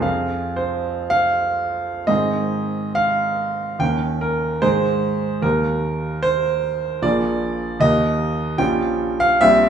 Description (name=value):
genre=classical, romantic character piece for solo piano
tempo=54-78 BPM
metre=2/4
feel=rubato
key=Ab major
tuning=A4 = 440 Hz
part: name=bright grand piano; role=solo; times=0.0-9.7 s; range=Bb1 to G5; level=-18 LUFS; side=right 1 dB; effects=none
room=moderate recital hall reverb, RT60 1.4 s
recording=small room ambience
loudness=-18 LUFS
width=side -8 dB against mid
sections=0.0-2.1 A section; 2.1-9.7 B section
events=none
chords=0.0 Fm; 2.1 Ab; 3.8 Eb7; 4.6 Ab; 5.4 Eb; 7.0 Bb7; 7.8 Eb; 8.6 Gm7b5/Bb